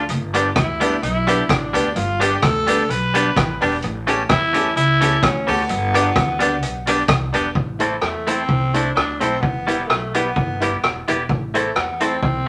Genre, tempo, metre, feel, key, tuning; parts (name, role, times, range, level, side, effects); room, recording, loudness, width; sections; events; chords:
ska; 129 BPM; 4/4; swing 54% on 8ths; A minor; A4 = 438 Hz
clean electric guitar; accompaniment; 0.0-12.2 s; E3 to A4; -24 LUFS; equal; analog delay
upright bass; bass; 0.0-12.5 s; E1 to E2; -28 LUFS; equal
street-band drum kit; drums; 0.1-12.3 s; hi-hat, kick drum, rim click; -24 LUFS; equal; analog delay
tack piano; stabs; 0.3-12.1 s; C#4 to C5; -27 LUFS; equal
tambourine; percussion; 0.3-7.4 s; -44 LUFS; equal
raspy tenor saxophone; melody; 0.6-12.5 s; A3 to B4; -25 LUFS; equal
wet studio reverb, RT60 0.7 s; -19 LUFS; mono
0.0-7.6 A section; 7.6-12.5 B section
0.1 G; 3.8 A7; 5.7 G; 7.6 Am; 9.4 Em; 11.3 Am